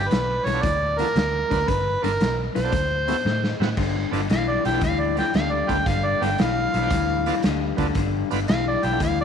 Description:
electric blues shuffle; 115 BPM; 4/4; swing 68% on 8ths; G mixolydian; A4 = 440 Hz
overdriven harmonica; melody; 0.0-9.2 s; Bb4 to G5; -24 LUFS; right 1 dB; slapback echo
bright tonewheel organ; accompaniment; 0.0-9.0 s; B3 to B4; -33 LUFS; right 11 dB; slow rotary speaker, overdrive
electric guitar through a small old amp; riff; 0.0-9.2 s; G2 to B3; -27 LUFS; left 12 dB
vintage muted fingered electric bass; bass; 0.0-9.2 s; G1 to A2; -27 LUFS; right 1 dB
raw garage drum kit; drums; 0.1-9.2 s; crash cymbal, hi-hat, kick drum, snare drum; -27 LUFS; right 1 dB
moderate echo chamber reverb, RT60 2.3 s; 1960s-style stereo with parts hard left and right; -20 LUFS; side -7 dB against mid
0.0-3.8 A section; 3.8-9.2 B section
drum fill 3.3-3.8; harmonica solo 3.8-9.2
0.0 G9; 2.7 D9; 3.8 G9

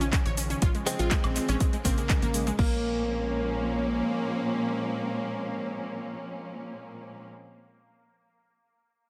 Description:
progressive house; 122 BPM; 4/4; straight; Bb minor; A4 = 440 Hz
direct-recorded clean electric guitar; melody; 0.0-7.4 s; Db3 to C4; -35 LUFS; equal; sidechain pumping, dub echo
airy dreamy lead; second line; 0.0-7.3 s; Bb3 to C4; -38 LUFS; equal; chorus, sidechain pumping, dub echo
muted studio string section; sustained chords; 0.0-7.3 s; Bb2 to Db4; -36 LUFS; equal; sidechain pumping
analog pluck; arpeggios; 0.0-7.4 s; Ab3 to Db5; -37 LUFS; equal; chorus, sidechain pumping, dub echo
tight sequencer bass; bass; 0.0-4.0 s; Bb1; -34 LUFS; equal; tube saturation, sidechain pumping
deep house drum kit; drums; 0.0-2.7 s; crash cymbal, handclaps, hi-hat, shaker, woodblock; -36 LUFS; equal; overdrive, sidechain pumping on hats, sidechain pumping on perc, sidechain pumping on cymbals
electronic kick drum; drums; 0.1-2.7 s; -28 LUFS; equal; overdrive
light reverb; -28 LUFS; mono
0.0-2.6 A section; 2.6-6.5 B section
drop 0.0-2.6
0.0 Dbadd9/Bb; 2.6 Bbm7

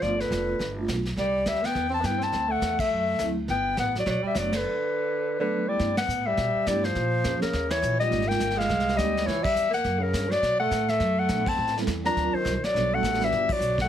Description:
jazz, small-group swing and bop; 208 BPM; 4/4; swing 60% on 8ths; G major; A4 = 440 Hz
mellow clarinet; melody; 0.0-13.9 s; Bb4 to Bb5; -26 LUFS; left 3 dB
breathy tenor saxophone; second line; 0.0-13.9 s; Db3 to D4; -31 LUFS; right 4 dB
vibraphone with medium mallets; accompaniment; 0.0-9.1, 11.3-13.3 s; F3 to B4; -31 LUFS; right 3 dB
upright bass; bass; 0.0-13.9 s; F1 to B2; -31 LUFS; right 1 dB
vintage brush drum kit; drums; 0.0-13.9 s; brushed snare drum, crash cymbal, hi-hat, kick drum, ride cymbal, snare drum; -33 LUFS; right 1 dB
moderate small room ambience, RT60 0.5 s; heavily compressed radio sound, multiband compression; -23 LUFS; side -10 dB against mid
0.0-5.8 A section; 5.8-13.9 B section
band accent 2.8, 4.5, 5.9, 7.7, 9.4, 11.4, 13.5
0.0 G7; 1.2 Cmaj7; 2.3 D7; 3.5 Gmaj7; 5.8 G6; 7.0 Bbm9; 7.5 Eb5; 8.1 Abmaj9; 9.3 C#dim; 9.8 F#; 10.4 Bm7; 11.6 Am9; 12.2 D7alt; 12.7 Gmaj9

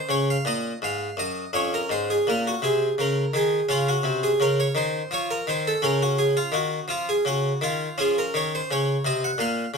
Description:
classical, baroque-style suite movement for harpsichord; 84 BPM; 3/4; rubato; Db major; A4 = 439 Hz
harpsichord; solo; 0.0-9.8 s; F2 to Gb5; -22 LUFS; equal
light reverb; close, detailed microphones; -22 LUFS; side -5 dB against mid
0.0-9.8 A section
0.0 Db; 0.8 Ab5; 1.5 Db/F; 3.7 Ebm13/C; 5.1 F7b13; 5.8 Dbadd11; 8.0 Db

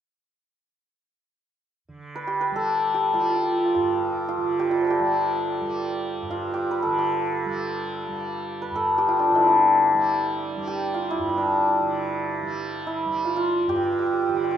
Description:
indian classical, Hindustani; free time; G raga khamaj; A4 = 439 Hz
tanpura; drone; 1.9-14.6 s; G2 to G3; -33 LUFS; right 2 dB
santur; melody; 2.2-14.6 s; F3 to B5; -21 LUFS; equal
moderate concert hall reverb, RT60 2.6 s; minimal, uncompressed stereo recording; -21 LUFS; side -9 dB against mid
1.9-14.6 A section

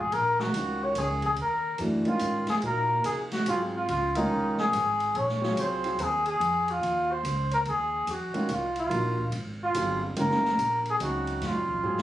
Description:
modal jazz; 143 BPM; 3/4; swing 64% on 8ths; A4 = 441 Hz
trumpet with bucket mute; melody; 0.0-12.0 s; Eb4 to Db5; -26 LUFS; equal
upright bass; bass; 0.0-12.0 s; Gb1 to Bb2; -34 LUFS; equal
open jazz drum kit; drums; 0.1-12.0 s; hi-hat, kick drum, ride cymbal, snare drum; -37 LUFS; equal
warm grand piano; accompaniment; 0.5-6.0, 8.3-12.0 s; Db3 to Ab4; -30 LUFS; right 1 dB
light reverb; recorded on a phone in the room, studio reverb; -25 LUFS; side -13 dB against mid
0.0-12.0 A section
drum fill 11.8
0.0 Ebm11; 2.6 Bbm11; 7.7 Ebm11

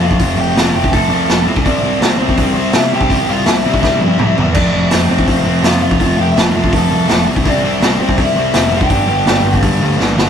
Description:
punk rock; 166 BPM; 4/4; straight; A4 = 440 Hz
raw garage guitar; melody; 0.0-10.0 s; C4 to A5; -18 LUFS; left 2 dB; overdrive
distorted electric guitar; riff; 0.0-10.3 s; F2 to C4; -20 LUFS; right 3 dB; distortion
sludgy distorted guitar; riff; 0.0-10.3 s; F2 to C4; -18 LUFS; left 3 dB; overdrive
fuzz picked electric bass; bass; 0.0-10.3 s; F1 to C3; -20 LUFS; right 1 dB; overdrive
raw garage drum kit; drums; 0.1-10.3 s; crash cymbal, hi-hat, kick drum, snare drum, toms; -15 LUFS; equal
moderate booth ambience, RT60 0.1 s; rough rehearsal-room recording; -11 LUFS; side -8 dB against mid
0.0-10.3 A section
drum fill 3.8-4.5, 10.0-10.3
0.0 F; 1.5 C; 4.5 F; 7.3 C; 8.9 G5

